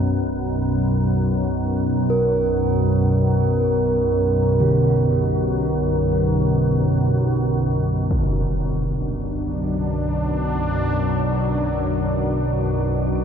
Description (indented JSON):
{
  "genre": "dark ambient drone",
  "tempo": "free time",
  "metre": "none",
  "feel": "none",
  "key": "B harmonic minor",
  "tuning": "A4 = 445 Hz",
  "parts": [
    { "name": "organ-like drone", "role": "drone", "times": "0.0-13.2 s", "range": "B1 to F#2", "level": "-20 LUFS", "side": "equal", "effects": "ensemble chorus, built-in reverb" },
    { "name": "bronze singing bowl", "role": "arpeggios", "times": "2.1-10.6 s", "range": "D3 to A#4", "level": "-24 LUFS", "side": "right 1 dB", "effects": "diffuse ambient delay" },
    { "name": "sweeping resonant pad", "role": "sustained chords", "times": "8.1-13.2 s", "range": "B2 to D4", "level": "-25 LUFS", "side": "equal", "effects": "chorus" },
    { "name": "impact", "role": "percussion", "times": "8.1-8.3 s", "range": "none", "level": "-27 LUFS", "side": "equal", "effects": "low-pass filter on sfx" },
    { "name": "wind-like tuned noise texture", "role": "texture", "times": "9.4-13.2 s", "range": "D4 to D5", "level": "-40 LUFS", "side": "right 4 dB", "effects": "none" }
  ],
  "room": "wet huge ambient reverb, RT60 7.1 s",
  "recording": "none",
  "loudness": "-18 LUFS",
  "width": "side -7 dB against mid",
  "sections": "0.0-8.1 A section; 8.1-13.2 B section",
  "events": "none",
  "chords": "0.0 Bm"
}